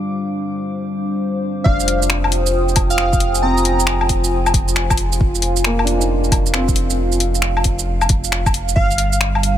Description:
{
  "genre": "future garage",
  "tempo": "135 BPM",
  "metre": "4/4",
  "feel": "swing 65% on 16ths",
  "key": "F dorian",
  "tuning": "A4 = 440 Hz",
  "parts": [
    { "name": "felt-muted upright piano", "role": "accompaniment", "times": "0.0-8.8 s", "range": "G3 to Eb4", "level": "-27 LUFS", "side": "equal", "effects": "sidechain pumping, ping-pong delay" },
    { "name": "dark analog pad", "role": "sustained chords", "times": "0.0-9.6 s", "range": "G3 to Eb6", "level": "-21 LUFS", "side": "equal", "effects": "chorus, sidechain pumping" },
    { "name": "drifting glass-harmonics texture", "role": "texture", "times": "0.0-1.7 s", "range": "D6", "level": "-38 LUFS", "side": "right 1 dB", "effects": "chorus, built-in reverb" },
    { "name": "plucky unison lead", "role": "melody", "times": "1.6-4.1, 8.8-9.2 s", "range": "F5 to Bb5", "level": "-23 LUFS", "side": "right 1 dB", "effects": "ping-pong delay" },
    { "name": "soft dub sub bass", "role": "bass", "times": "1.7-9.6 s", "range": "F1 to G1", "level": "-20 LUFS", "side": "equal", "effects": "tube saturation, sidechain pumping" },
    { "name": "electronic kick drum", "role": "drums", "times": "1.7-8.9 s", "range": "none", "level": "-18 LUFS", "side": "equal", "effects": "overdrive" },
    { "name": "deep house drum kit", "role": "drums", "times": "1.8-9.5 s", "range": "finger snaps, hi-hat, shaker, woodblock", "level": "-20 LUFS", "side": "left 2 dB", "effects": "overdrive" }
  ],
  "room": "digital ambience",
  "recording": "none",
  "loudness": "-15 LUFS",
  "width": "side -11 dB against mid",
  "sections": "0.0-1.7 A section; 1.7-9.6 B section",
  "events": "filter sweep 0.0-1.7",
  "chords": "0.0 G7(no3); 1.7 Fm9; 8.8 Gm7",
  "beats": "0.32 0.76 1.21 | 1.65 2.10 2.54 2.98 | 3.43 3.87 4.32 4.76 | 5.21 5.65 6.09 6.54 | 6.98 7.43 7.87 8.32 | 8.76 9.21"
}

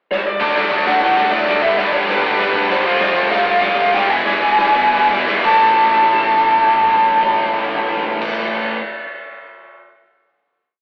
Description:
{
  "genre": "punk rock",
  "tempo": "167-198 BPM",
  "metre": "4/4",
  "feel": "straight",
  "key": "A mixolydian",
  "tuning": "A4 = 444 Hz",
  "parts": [
    { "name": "bluesy overdriven lead guitar", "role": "melody", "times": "0.1-8.3 s", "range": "B4 to A5", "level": "-18 LUFS", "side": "equal", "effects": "distortion" },
    { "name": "raw garage drum kit", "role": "drums", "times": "0.1-9.8 s", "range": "crash cymbal, hi-hat, kick drum, snare drum, toms", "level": "-26 LUFS", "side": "equal", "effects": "none" },
    { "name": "cranked stack guitar", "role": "riff", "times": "0.4-8.8 s", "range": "E2 to D4", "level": "-22 LUFS", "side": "equal", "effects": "overdrive" },
    { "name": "tight distorted guitar", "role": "riff", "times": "0.4-8.8 s", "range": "G2 to F4", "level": "-23 LUFS", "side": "equal", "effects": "distortion" },
    { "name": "modern bright picked electric bass", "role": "bass", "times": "0.4-8.2 s", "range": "E1 to A2", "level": "-36 LUFS", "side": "equal", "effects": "none" }
  ],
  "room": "moderate stone room reverb, RT60 1.1 s",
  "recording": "rough rehearsal-room recording, warm saturation, telephone sound",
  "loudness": "-15 LUFS",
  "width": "mono",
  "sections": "0.0-0.4 pickup bar; 0.4-5.4 verse; 5.4-8.3 final chord",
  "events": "drum fill 0.1-0.4, 4.7-5.4, 5.6-8.2; slowing down 2.8-5.4",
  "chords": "0.4 D; 1.6 G; 2.8 F; 4.1 E; 5.4 A",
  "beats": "0.11 | 0.41 0.72 1.02 1.33 | 1.63 1.94 2.24 2.54 | 2.85 3.15 3.46 3.77 | 4.09 4.42 4.75 5.09 | 5.44 5.80 6.16 6.52 | 6.88 7.24 7.59 7.95"
}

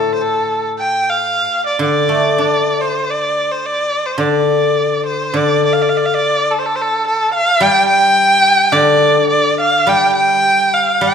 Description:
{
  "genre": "chinese traditional, Chinese chamber ensemble",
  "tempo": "105 BPM",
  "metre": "2/4",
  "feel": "rubato",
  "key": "D yu mode",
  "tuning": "A4 = 440 Hz",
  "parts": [
    { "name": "rich erhu", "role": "melody", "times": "0.0-11.1 s", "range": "A4 to G5", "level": "-13 LUFS", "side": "equal", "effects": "none" },
    { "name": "guzheng", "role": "accompaniment", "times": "0.0-11.1 s", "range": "A2 to D4", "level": "-17 LUFS", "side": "left 2 dB", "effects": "none" }
  ],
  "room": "wet recital hall reverb, RT60 1.7 s",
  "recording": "minimal, uncompressed stereo recording",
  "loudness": "-12 LUFS",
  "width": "side -7 dB against mid",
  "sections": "0.0-5.4 A section; 5.4-11.1 B section",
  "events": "none",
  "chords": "none",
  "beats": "0.21 | 0.80 1.38 | 1.95 2.52 | 3.08 3.64 | 4.20 4.78 | 5.36 5.93 | 6.50 7.06 | 7.62 8.17 | 8.73 9.30 | 9.88 10.45 | 11.02"
}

